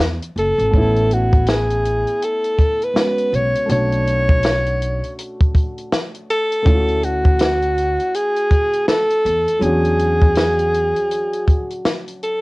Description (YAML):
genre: hip hop, jazz-hop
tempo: 81 BPM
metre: 4/4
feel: swing 61% on 16ths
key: A major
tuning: A4 = 439 Hz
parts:
  - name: upright bass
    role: bass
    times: 0.0-10.9 s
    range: F#1 to E2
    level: -21 LUFS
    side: equal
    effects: none
  - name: compact cocktail drum kit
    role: drums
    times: 0.0-12.4 s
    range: hi-hat, kick drum, snare drum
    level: -17 LUFS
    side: equal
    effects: vintage 12-bit sampler grit, cassette tape
  - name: breathy alto saxophone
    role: melody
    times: 0.4-12.4 s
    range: F#4 to C#5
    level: -18 LUFS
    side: equal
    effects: none
  - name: dark baby grand piano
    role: accompaniment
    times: 0.7-12.4 s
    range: F#3 to F#4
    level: -26 LUFS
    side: equal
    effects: cassette tape
room: light reverb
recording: home recording on cassette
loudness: -15 LUFS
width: side -23 dB against mid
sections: 0.7-12.4 A section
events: none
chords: 0.0 Eadd9; 0.7 Amaj9; 3.7 Bm9; 6.7 Dmaj7; 9.6 E13